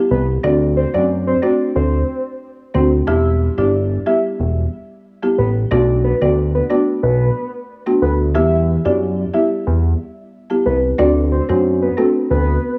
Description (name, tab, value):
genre	dancehall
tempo	91 BPM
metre	4/4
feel	straight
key	E minor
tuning	A4 = 440 Hz
part	folk marimba with medium mallets	accompaniment	0.0-12.2 s	G3 to G4	-21 LUFS	equal	none
part	soft octave-layered synth lead	melody	0.1-12.8 s	A4 to E5	-23 LUFS	equal	chorus, phaser, digital delay
part	fat analog bass	bass	0.1-12.6 s	E1 to F#2	-19 LUFS	equal	none
room	light reverb, small room ambience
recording	none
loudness	-17 LUFS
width	mono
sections	0.0-12.8 A section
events	none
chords	0.4 D7; 3.1 Em; 5.7 Bm7; 8.3 Em; 11.0 D7